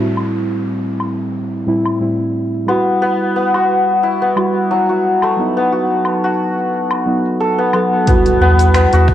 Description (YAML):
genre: organic downtempo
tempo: 89 BPM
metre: 4/4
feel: swing 54% on 16ths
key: unclear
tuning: A4 = 441 Hz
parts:
  - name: muted felt-like synth keys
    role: accompaniment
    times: 0.0-9.1 s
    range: A2 to A4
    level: -18 LUFS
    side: right 1 dB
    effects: chorus, sidechain pumping, analog delay
  - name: santur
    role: arpeggios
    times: 0.0-9.1 s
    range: F#3 to A4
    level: -15 LUFS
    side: left 2 dB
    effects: analog delay
  - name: organic electronic drum kit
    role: drums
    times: 0.0-9.1 s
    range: cabasa, finger snaps, hi-hat, woodblock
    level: -23 LUFS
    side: left 1 dB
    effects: low-pass filter on hats, cassette tape, low-pass filter on perc, low-pass filter on snare, low-pass filter on cymbals, low-pass filter on room
  - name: downlifter and impact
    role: sound effects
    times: 0.0-2.7, 8.1-9.1 s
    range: none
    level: -26 LUFS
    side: equal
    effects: none
  - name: electronic kick drum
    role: drums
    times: 8.1-9.1 s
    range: none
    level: -14 LUFS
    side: equal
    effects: cassette tape
  - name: cajon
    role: percussion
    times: 8.3-9.1 s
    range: none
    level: -30 LUFS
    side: right 2 dB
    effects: none
  - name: round analog bass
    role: bass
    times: 8.4-9.1 s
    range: E2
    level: -11 LUFS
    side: equal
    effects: sidechain pumping
room: moderate lush hall reverb, RT60 2.3 s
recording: home recording on cassette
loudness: -13 LUFS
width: side -11 dB against mid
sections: 0.0-8.1 A section; 8.1-9.1 B section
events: impact 8.1-9.1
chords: 0.0 Am7; 2.7 Emadd9; 5.4 B; 8.1 Emadd9